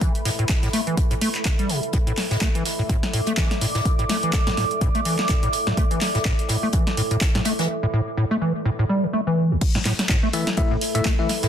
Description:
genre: acid house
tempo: 125 BPM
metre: 4/4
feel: swing 57% on 16ths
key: unclear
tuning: A4 = 441 Hz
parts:
  - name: acid bass, square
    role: riff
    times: 0.0-11.5 s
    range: A1 to A3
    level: -24 LUFS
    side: equal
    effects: overdrive, analog chorus, sidechain pumping, dub echo
  - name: electronic kick drum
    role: drums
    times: 0.0-11.2 s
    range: none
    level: -22 LUFS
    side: equal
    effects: none
  - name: jazz brush drum kit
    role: drums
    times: 0.0-11.5 s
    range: hi-hat, snare drum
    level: -34 LUFS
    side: left 3 dB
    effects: sidechain pumping on hats, high-pass filter on hats, soft clipping on snare, high-pass filter on snare, high-pass filter on room
  - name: punchy analog drum machine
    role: drums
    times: 0.0-11.5 s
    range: crash cymbal, handclaps, hi-hat, ride cymbal, snare drum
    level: -26 LUFS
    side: equal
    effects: none
  - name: deep dark ambient pad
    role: texture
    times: 0.0-11.5 s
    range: A4 to D6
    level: -28 LUFS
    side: right 1 dB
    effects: chorus, built-in reverb, sidechain pumping
  - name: bell-like tine electric piano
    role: stabs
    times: 10.3-11.3 s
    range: A3 to E5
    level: -26 LUFS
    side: left 6 dB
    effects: fast stereo tremolo, dub echo
room: light reverb, digital ambience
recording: dense, heavily limited modern master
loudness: -19 LUFS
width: side -9 dB against mid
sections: 0.0-9.6 A section; 9.6-11.5 B section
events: drop 9.6-11.5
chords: 0.0 A5

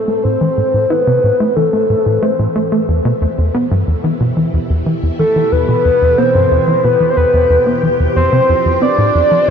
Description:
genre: ambient, sequencer-driven space music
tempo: 91 BPM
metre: 4/4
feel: straight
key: unclear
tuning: A4 = 440 Hz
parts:
  - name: soft octave-layered synth lead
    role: melody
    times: 0.0-9.5 s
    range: A4 to D5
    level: -13 LUFS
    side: left 1 dB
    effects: chorus, ping-pong delay
  - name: phased string machine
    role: sustained chords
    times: 0.0-9.5 s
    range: A2 to A4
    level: -23 LUFS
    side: equal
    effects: ensemble chorus, phaser
  - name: tight sequencer bass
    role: riff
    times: 0.1-9.5 s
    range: E2 to E4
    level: -15 LUFS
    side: equal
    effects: lush chorus, ping-pong delay
room: wet huge ambient reverb, RT60 8.7 s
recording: in a vast, echoing space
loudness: -11 LUFS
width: side -7 dB against mid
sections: 0.0-9.5 A section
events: fade-in on string machine 0.0-9.5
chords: 0.0 Am; 2.9 Em; 8.2 F

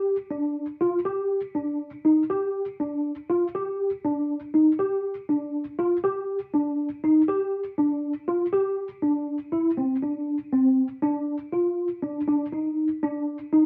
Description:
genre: progressive instrumental, progressive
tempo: 241 BPM (eighths)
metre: 5/8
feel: straight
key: unclear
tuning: A4 = 440 Hz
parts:
  - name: mellow tine electric piano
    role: solo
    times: 0.0-13.7 s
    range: C4 to G4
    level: -25 LUFS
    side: equal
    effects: ensemble chorus
room: moderate studio reverb, RT60 0.7 s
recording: dark, warm production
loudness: -26 LUFS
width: mono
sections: 0.0-9.8 A section; 9.8-13.7 B section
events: none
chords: none

